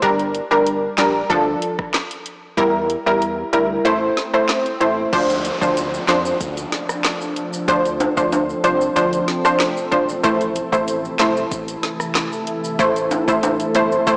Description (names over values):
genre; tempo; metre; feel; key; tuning
dancehall; 94 BPM; 4/4; straight; D minor; A4 = 442 Hz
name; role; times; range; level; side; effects
analog pluck; accompaniment; 0.0-14.2 s; F3 to C5; -16 LUFS; equal; chorus
round analog bass; bass; 0.0-14.2 s; E1 to F2; -32 LUFS; equal; none
afro-pop drum kit; drums; 0.0-14.2 s; crash cymbal, handclaps, hi-hat, kick drum, rim click, snare drum; -24 LUFS; equal; none
swell and downlifter; sound effects; 4.3-10.2 s; none; -30 LUFS; equal; none
glassy FM pad; sustained chords; 6.3-14.2 s; C3 to A4; -27 LUFS; equal; ensemble chorus, built-in reverb, sidechain pumping
maracas and timbales; percussion; 5.1-14.2 s; none; -26 LUFS; equal; none
room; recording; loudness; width
moderate lush hall reverb, RT60 2.2 s; blown-out, overdriven recording, overdrive, small speaker sound; -16 LUFS; side -38 dB against mid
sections
0.0-5.1 A section; 5.1-14.2 B section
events
kick muted 3.9-5.1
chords
0.0 Gm; 1.3 Dm; 2.6 Edim; 3.9 Am; 5.1 Dm7; 10.2 Am